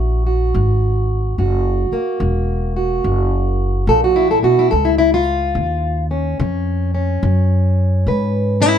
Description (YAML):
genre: acoustic country blues, solo or duo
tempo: 72 BPM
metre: 4/4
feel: swing 64% on 8ths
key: F# mixolydian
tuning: A4 = 440 Hz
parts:
  - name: fingerpicked plugged-in steel-string acoustic guitar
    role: melody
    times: 0.0-8.8 s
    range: F#2 to B4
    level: -17 LUFS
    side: equal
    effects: none
  - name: upright bass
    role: bass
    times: 0.0-8.8 s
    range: E1 to G#2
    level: -17 LUFS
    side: equal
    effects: none
room: little or no reverb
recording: dark, warm production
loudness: -15 LUFS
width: side -8 dB against mid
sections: 0.0-8.8 A section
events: none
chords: 0.0 F#7; 4.7 C#